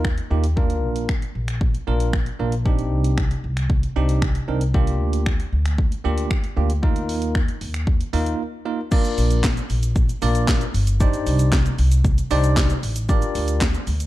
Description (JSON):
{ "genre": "dance-pop", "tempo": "115 BPM", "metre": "4/4", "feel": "straight", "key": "Bb major", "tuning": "A4 = 440 Hz", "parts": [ { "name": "bell-like tine electric piano", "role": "accompaniment", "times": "0.0-13.7 s", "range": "Bb3 to D5", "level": "-25 LUFS", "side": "right 2 dB", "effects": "medium stereo tremolo, sidechain pumping" }, { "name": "upright bass", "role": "bass", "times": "0.0-14.1 s", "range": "G1 to Eb2", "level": "-21 LUFS", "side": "equal", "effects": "sidechain pumping" }, { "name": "house drum kit", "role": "drums", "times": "0.0-14.1 s", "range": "crash cymbal, finger snaps, handclaps, hi-hat, kick drum, shaker, snare drum", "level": "-22 LUFS", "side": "equal", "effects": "none" } ], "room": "light reverb", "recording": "dark, warm production", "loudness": "-18 LUFS", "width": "side -16 dB against mid", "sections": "0.0-8.9 A section; 8.9-14.1 B section", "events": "break 8.4-8.9", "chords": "0.0 Ebsus2; 0.6 Bb; 2.7 Cmadd9; 4.7 Gm7; 6.8 Ebsus2; 8.9 Bb; 11.0 Cmadd9; 13.1 Gm7", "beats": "0.05 | 0.57 1.09 1.61 2.13 | 2.66 3.18 3.70 4.22 | 4.74 5.26 5.79 6.31 | 6.83 7.35 7.87 8.39 | 8.92 9.44 9.96 10.48 | 11.00 11.53 12.05 12.57 | 13.09 13.61" }